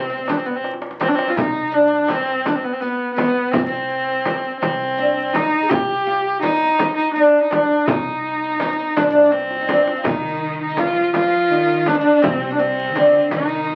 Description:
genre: Persian modal ensemble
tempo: 55 BPM (dotted quarters)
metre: 6/8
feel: straight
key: C avaz esfahan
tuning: A4 = 440 Hz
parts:
  - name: oud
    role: melody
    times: 0.0-13.8 s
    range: B3 to Ab4+50c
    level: -22 LUFS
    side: equal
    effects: none
  - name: clear studio cello section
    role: second line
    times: 0.0-0.6, 10.0-13.8 s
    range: C3 to F3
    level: -30 LUFS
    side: equal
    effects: none
  - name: rich kamancheh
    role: second line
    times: 0.0-13.8 s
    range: B3 to G4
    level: -21 LUFS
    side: equal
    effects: none
  - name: riq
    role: percussion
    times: 0.1-13.8 s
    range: none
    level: -32 LUFS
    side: equal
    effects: none
  - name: tombak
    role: percussion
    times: 0.1-13.8 s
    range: none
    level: -32 LUFS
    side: equal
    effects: none
  - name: frame drum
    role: percussion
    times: 0.3-13.5 s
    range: none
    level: -26 LUFS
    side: equal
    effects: none
  - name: upright bass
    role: bass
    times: 1.4-13.8 s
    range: C2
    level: -40 LUFS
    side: equal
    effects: none
room: wet small room reverb, RT60 0.5 s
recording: very old 78 rpm record, vinyl crackle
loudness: -18 LUFS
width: mono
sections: 0.0-1.4 A section; 1.4-13.8 B section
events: drum fill 0.6-1.4, 9.3-10.1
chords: none

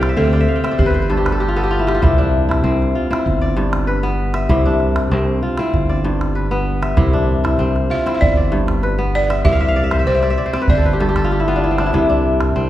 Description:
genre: west african traditional, West African string and xylophone music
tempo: 97 BPM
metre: 4/4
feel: straight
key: C major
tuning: A4 = 440 Hz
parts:
  - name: balafon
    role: melody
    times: 0.0-1.7, 7.9-11.6 s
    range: G4 to E5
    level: -22 LUFS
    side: right 2 dB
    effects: none
  - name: kora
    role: arpeggios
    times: 0.0-12.7 s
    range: G2 to G5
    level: -18 LUFS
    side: left 1 dB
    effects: none
  - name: fingered electric bass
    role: bass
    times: 0.0-12.7 s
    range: G1 to D2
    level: -19 LUFS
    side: equal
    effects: none
  - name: calabash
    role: percussion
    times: 0.0-12.5 s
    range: none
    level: -21 LUFS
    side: right 1 dB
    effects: none
room: wet recital hall reverb, RT60 1.9 s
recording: heard from further back in the room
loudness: -14 LUFS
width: side -13 dB against mid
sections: 0.0-12.7 A section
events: kora fill 0.0-2.0, 9.5-11.9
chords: 0.0 C; 0.8 G; 2.0 C; 3.3 G; 4.5 C; 5.7 G; 7.0 C; 8.2 G; 9.5 C; 10.7 G; 11.9 C

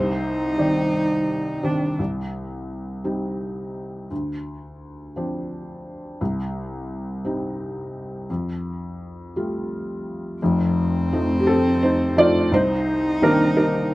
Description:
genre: acoustic folk-pop ballad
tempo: 57 BPM (dotted quarters)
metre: 6/8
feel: straight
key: C dorian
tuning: A4 = 440 Hz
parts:
  - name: felt-muted upright piano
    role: melody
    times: 0.0-13.9 s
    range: F1 to D5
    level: -22 LUFS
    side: equal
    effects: none
  - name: dark cello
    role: second line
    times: 0.0-2.0, 10.4-13.9 s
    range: C4 to Eb4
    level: -24 LUFS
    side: equal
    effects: none
room: light reverb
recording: recorded outdoors, with no room sound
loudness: -20 LUFS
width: side -18 dB against mid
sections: 0.0-2.0 A section; 2.0-10.4 B section; 10.4-13.9 A section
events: none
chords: 0.0 Cmadd9; 2.0 Cm; 4.1 Dm7; 6.2 Cm; 8.3 Fadd9; 10.4 F7; 12.5 Cm7

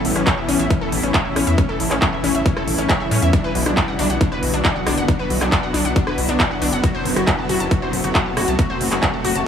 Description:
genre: uplifting trance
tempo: 137 BPM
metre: 4/4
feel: straight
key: unclear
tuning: A4 = 442 Hz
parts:
  - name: gritty driven synth bass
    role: bass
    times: 0.0-9.4 s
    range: F#1 to A2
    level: -23 LUFS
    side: equal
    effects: sidechain pumping
  - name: big-room dance drum kit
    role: drums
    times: 0.0-9.4 s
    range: handclaps, hi-hat, rim click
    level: -23 LUFS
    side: equal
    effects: overdrive, small room ambience
  - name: wide unison pluck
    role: arpeggios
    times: 0.2-9.4 s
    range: C#4 to A5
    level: -23 LUFS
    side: left 3 dB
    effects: sidechain pumping, digital delay
  - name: electronic kick drum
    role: drums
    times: 0.3-9.1 s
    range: none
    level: -20 LUFS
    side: equal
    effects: overdrive, small room ambience
room: light reverb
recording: none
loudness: -16 LUFS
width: side -8 dB against mid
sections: 0.0-9.5 A section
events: none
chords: 0.0 A; 3.3 Bm; 6.8 F#dim

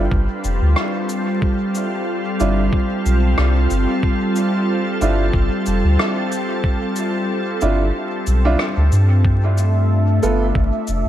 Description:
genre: ambient dub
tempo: 92 BPM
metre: 4/4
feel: swing 55% on 16ths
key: unclear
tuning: A4 = 437 Hz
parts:
  - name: soft additive organ-like pad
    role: sustained chords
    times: 0.0-11.1 s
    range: G3 to B4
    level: -21 LUFS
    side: equal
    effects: ensemble chorus, built-in reverb
  - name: soft dub sub bass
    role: bass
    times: 0.0-11.1 s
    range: F1 to G2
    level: -16 LUFS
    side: equal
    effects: none
  - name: electronic kick drum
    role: drums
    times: 0.1-10.7 s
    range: none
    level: -19 LUFS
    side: equal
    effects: none
  - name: cabasa and rim click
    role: drums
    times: 0.4-11.0 s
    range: none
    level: -26 LUFS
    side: left 1 dB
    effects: dub echo
  - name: clear upright piano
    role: stabs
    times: 2.4-10.4 s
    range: B3 to A4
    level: -26 LUFS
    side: right 3 dB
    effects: low-pass filter, dub echo
  - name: bubbling stepped-filter texture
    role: texture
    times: 9.2-11.1 s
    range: E5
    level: -27 LUFS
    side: right 5 dB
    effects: chorus, built-in reverb
room: light reverb, small room ambience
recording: vinyl crackle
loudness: -16 LUFS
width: side -12 dB against mid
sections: 0.0-11.1 A section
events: filter sweep on upright piano 0.0-11.1; kick drops out 7.9-9.2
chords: 0.0 Dm; 9.2 G7(no3)

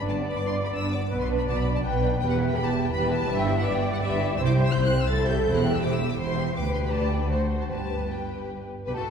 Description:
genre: quick classical-period movement for string orchestra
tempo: 164 BPM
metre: 3/4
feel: rubato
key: G major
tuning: A4 = 440 Hz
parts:
  - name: rich symphonic violin section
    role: melody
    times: 0.0-9.1 s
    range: E5 to A6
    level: -33 LUFS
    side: left 4 dB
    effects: none
  - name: warm symphonic violin section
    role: second line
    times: 0.0-9.1 s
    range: B3 to E5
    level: -30 LUFS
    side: left 4 dB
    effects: none
  - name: warm symphonic viola section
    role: accompaniment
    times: 0.0-9.1 s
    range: F#4 to E5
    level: -30 LUFS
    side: right 1 dB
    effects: none
  - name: rich symphonic cello section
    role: bass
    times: 0.0-9.0 s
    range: C2 to B2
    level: -29 LUFS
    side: right 2 dB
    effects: none
  - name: warm symphonic double bass section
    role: bass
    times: 0.0-9.0 s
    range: E1 to D2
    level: -28 LUFS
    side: right 2 dB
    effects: none
room: wet concert hall reverb, RT60 1.8 s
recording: heard from further back in the room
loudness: -23 LUFS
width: side -7 dB against mid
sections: 0.0-8.9 A section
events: none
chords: 0.0 G; 1.1 G/B; 2.2 Em; 3.3 Em/G; 4.4 C; 5.5 C/E; 6.6 G/D; 7.3 D7; 7.7 G

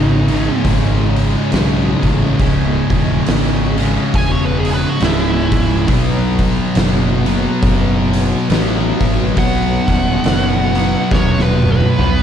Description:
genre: stoner and doom metal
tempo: 69 BPM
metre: 4/4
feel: swing 58% on 8ths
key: unclear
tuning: A4 = 440 Hz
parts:
  - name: fuzz lead guitar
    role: melody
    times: 0.0-12.2 s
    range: D#4 to G#5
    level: -22 LUFS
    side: right 2 dB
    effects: wah, distortion, ping-pong delay
  - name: string machine, full ensemble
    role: sustained chords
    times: 0.0-12.2 s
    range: B3 to D#5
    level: -28 LUFS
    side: equal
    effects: phaser, ensemble chorus
  - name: heavy high-gain guitar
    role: riff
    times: 0.0-12.2 s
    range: C#2 to B3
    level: -24 LUFS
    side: equal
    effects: distortion
  - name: thick fuzz guitar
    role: riff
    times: 0.0-12.2 s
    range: C#2 to B3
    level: -19 LUFS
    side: left 8 dB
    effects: distortion
  - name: thick fuzz guitar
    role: riff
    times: 0.0-12.2 s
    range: C#2 to B3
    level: -20 LUFS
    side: right 8 dB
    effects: distortion
  - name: fuzz picked electric bass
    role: bass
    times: 0.0-12.2 s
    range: C#1 to B1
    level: -19 LUFS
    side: equal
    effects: overdrive
  - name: oversized low-tuned drum kit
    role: drums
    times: 0.3-12.2 s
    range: hi-hat, kick drum, snare drum, toms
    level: -19 LUFS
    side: equal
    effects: none
room: small room ambience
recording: dark, warm production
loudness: -12 LUFS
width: side -9 dB against mid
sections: 0.0-12.2 A section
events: lead electric guitar solo 0.0-12.2; drum fill 11.1-12.2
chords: 0.0 C#m; 5.9 B

